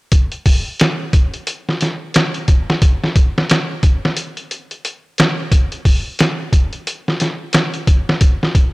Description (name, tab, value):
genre	trip hop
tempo	89 BPM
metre	4/4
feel	swing 59% on 16ths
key	none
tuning	none
part	trip hop sampler-style drum kit	drums	0.1-8.7 s	hi-hat, kick drum, snare drum	-13 LUFS	equal	studio reverb
room	little or no reverb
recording	dry, gritty hardware recording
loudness	-14 LUFS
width	side -23 dB against mid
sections	0.1-8.7 A section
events	none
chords	none